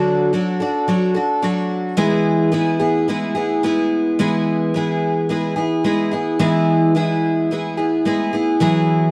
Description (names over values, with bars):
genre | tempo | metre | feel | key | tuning
rock | 108 BPM | 4/4 | straight | E mixolydian | A4 = 435 Hz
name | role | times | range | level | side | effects
picked twelve-string acoustic guitar | solo | 0.0-9.1 s | D3 to A4 | -18 LUFS | equal | none
room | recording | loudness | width
light reverb | dry, close 1970s-style studio recording | -18 LUFS | mono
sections
0.0-4.2 A section; 4.2-8.6 B section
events
none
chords
0.0 D; 2.0 E